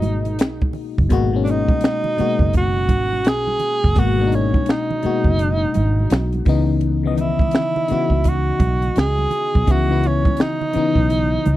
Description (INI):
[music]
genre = R&B, neo-soul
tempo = 84 BPM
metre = 4/4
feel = swing 63% on 16ths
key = G# minor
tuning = A4 = 440 Hz
[part]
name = breathy tenor saxophone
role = melody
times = 0.0-11.6 s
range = C#4 to G#4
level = -22 LUFS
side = right 2 dB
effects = none
[part]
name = FM electric piano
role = accompaniment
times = 0.0-11.6 s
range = B2 to D#5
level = -22 LUFS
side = left 6 dB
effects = chorus
[part]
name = vintage muted fingered electric bass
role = bass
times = 0.0-11.6 s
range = F#1 to C#2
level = -20 LUFS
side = right 1 dB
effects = none
[part]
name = compact cocktail drum kit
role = drums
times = 0.0-11.6 s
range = finger snaps, hi-hat, kick drum, snare drum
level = -18 LUFS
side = equal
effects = none
[part]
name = congas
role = percussion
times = 0.0-11.6 s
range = none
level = -30 LUFS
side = right 5 dB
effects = none
[sound]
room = little or no reverb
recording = dry, close 1970s-style studio recording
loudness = -16 LUFS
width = side -15 dB against mid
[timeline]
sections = 0.0-11.6 A section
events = none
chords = 0.0 G#m9; 6.5 C#m9